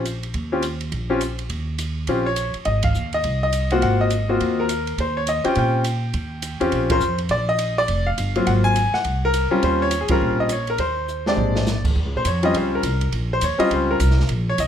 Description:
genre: jazz piano trio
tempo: 206 BPM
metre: 4/4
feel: swing 61% on 8ths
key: Eb mixolydian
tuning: A4 = 440 Hz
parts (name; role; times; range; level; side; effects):
- bright upright piano; melody; 0.0-14.7 s; Gb3 to Ab5; -20 LUFS; left 1 dB; plate reverb
- upright bass; bass; 0.0-14.7 s; F1 to Bb2; -23 LUFS; equal; none
- open jazz drum kit; drums; 0.1-14.7 s; crash cymbal, hi-hat, kick drum, ride cymbal, snare drum, toms; -29 LUFS; right 2 dB; none
room: light reverb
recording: none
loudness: -18 LUFS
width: side -9 dB against mid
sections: 0.0-12.0 A section; 12.0-14.7 B section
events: band accent 2.8, 6.9, 10.1; drum fill 11.1-11.7; upright piano solo 12.0-14.7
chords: 0.0 Eb7(no3); 2.7 Ab13; 5.0 Eb13; 7.3 Bb6; 8.5 Ab13; 9.6 Eb13; 11.4 Bb13; 12.0 Eb13

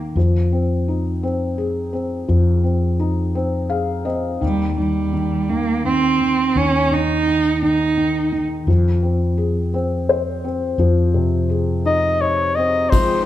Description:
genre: folk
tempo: 56 BPM (dotted quarters)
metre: 6/8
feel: straight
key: unclear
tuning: A4 = 440 Hz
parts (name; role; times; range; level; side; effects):
- felt-muted upright piano; accompaniment; 0.0-13.3 s; C3 to F5; -22 LUFS; left 3 dB; none
- fretless electric bass; bass; 0.0-12.9 s; Eb2 to F2; -20 LUFS; equal; none
- rich cello; second line; 4.4-8.4 s; G3 to Eb4; -18 LUFS; right 4 dB; none
- warm flugelhorn; melody; 11.9-13.2 s; C5 to Eb5; -17 LUFS; left 2 dB; none
- warm chamber string section; sustained chords; 12.9-13.3 s; F3 to G4; -25 LUFS; equal; none
- soft brush drum kit; drums; 12.9-13.1 s; kick drum, ride cymbal; -18 LUFS; left 1 dB; none
room: moderate recital hall reverb, RT60 1.4 s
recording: recorded in a church or concert hall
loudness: -16 LUFS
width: side -13 dB against mid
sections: 0.0-12.9 A section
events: cello solo 0.0-12.9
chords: 0.2 Fm7; 4.4 Eb; 8.7 Fm7

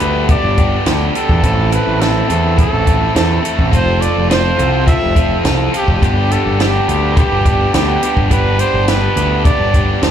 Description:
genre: indie rock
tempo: 105 BPM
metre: 4/4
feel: straight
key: G major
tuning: A4 = 440 Hz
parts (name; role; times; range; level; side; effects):
- bright trumpet; melody; 0.0-10.0 s; G4 to E5; -19 LUFS; equal; slapback echo
- overdriven electric guitar; riff; 0.0-10.1 s; F3 to A4; -17 LUFS; equal; slapback echo
- growling picked electric bass; bass; 0.0-10.1 s; F1 to E2; -16 LUFS; equal; overdrive
- compact cocktail drum kit; drums; 0.0-10.1 s; hi-hat, kick drum, snare drum; -16 LUFS; equal; none
room: little or no reverb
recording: live gig heard through the venue's PA, club reverb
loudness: -11 LUFS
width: side -9 dB against mid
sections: 0.0-10.1 A section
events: none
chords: 0.0 G; 1.4 Am; 3.7 Fmaj7; 6.0 G

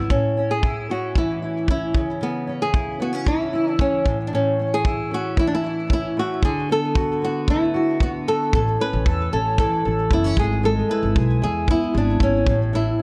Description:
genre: acoustic pop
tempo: 114 BPM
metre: 4/4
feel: straight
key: A major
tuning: A4 = 440 Hz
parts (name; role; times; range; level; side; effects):
- fingerpicked steel-string acoustic guitar; accompaniment; 0.0-13.0 s; A2 to A4; -28 LUFS; equal; double-tracked
- upright bass; bass; 0.0-0.1, 8.5-12.9 s; F#1 to E2; -25 LUFS; equal; none
- flamenco guitar; melody; 0.1-13.0 s; B3 to B4; -25 LUFS; equal; digital delay
- kick drum; drums; 0.1-12.6 s; none; -24 LUFS; equal; none
room: light reverb, small room ambience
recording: dark, warm production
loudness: -21 LUFS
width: mono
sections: 0.1-13.0 A section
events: none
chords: 0.1 A; 1.9 C#m; 4.1 A; 6.4 D6; 8.5 A; 10.4 E/G#; 12.5 A

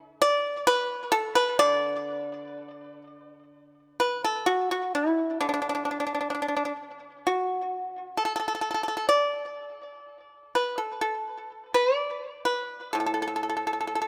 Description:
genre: chinese traditional, Chinese solo plucked strings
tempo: 64 BPM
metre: 2/4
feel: rubato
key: D gong mode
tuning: A4 = 437 Hz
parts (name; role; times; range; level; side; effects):
- pipa; solo; 0.0-14.1 s; A2 to D5; -28 LUFS; equal; tape echo
room: light reverb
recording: close, detailed microphones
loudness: -27 LUFS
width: mono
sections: 0.0-3.5 A section; 3.5-14.1 B section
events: none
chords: none

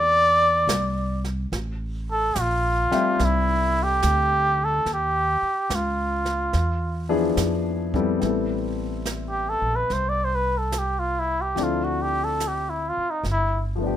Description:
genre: jazz ballad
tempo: 72 BPM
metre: 4/4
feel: swing 67% on 8ths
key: A minor from 8.2 s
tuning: A4 = 439 Hz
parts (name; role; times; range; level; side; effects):
- trumpet with cup mute; melody; 0.0-13.6 s; D#4 to D5; -22 LUFS; equal; none
- upright bass; bass; 0.0-14.0 s; G1 to F2; -27 LUFS; equal; none
- jazz brush drum kit; drums; 0.7-14.0 s; brushed snare drum, hi-hat, kick drum, snare drum; -33 LUFS; right 4 dB; none
- clear grand piano; accompaniment; 2.9-14.0 s; F3 to E5; -26 LUFS; left 6 dB; none
room: light reverb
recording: minimal, uncompressed stereo recording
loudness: -21 LUFS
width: side -10 dB against mid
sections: 0.0-8.2 A section; 8.2-14.0 B section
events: muted trumpet solo 8.2-14.0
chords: 0.0 Cadd9; 1.5 Am7; 4.9 Eb9; 6.5 E7b9; 8.2 Am9; 11.6 Dm9; 13.2 G9

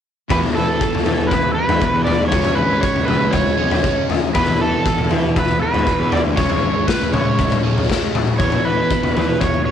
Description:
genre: psychedelic rock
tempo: 118 BPM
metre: 4/4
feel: straight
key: E major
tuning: A4 = 439 Hz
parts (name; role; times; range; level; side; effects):
- overdriven slide guitar; melody; 0.3-9.7 s; A4 to D5; -20 LUFS; right 2 dB; tape echo
- fuzz guitar; riff; 0.3-9.7 s; E2 to C#4; -22 LUFS; right 2 dB; distortion, phaser
- fuzz picked electric bass; bass; 0.3-9.4 s; G#1 to E3; -24 LUFS; right 2 dB; overdrive
- raw garage drum kit; drums; 0.3-9.5 s; kick drum, snare drum, toms; -18 LUFS; left 3 dB; none
room: moderate spring reverb, RT60 1.3 s, small room ambience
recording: 1960s-style stereo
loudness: -15 LUFS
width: side -9 dB against mid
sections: 0.3-9.7 A section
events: none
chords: 0.3 E5; 2.3 C#5; 4.4 E5; 6.4 C#5; 8.4 E5

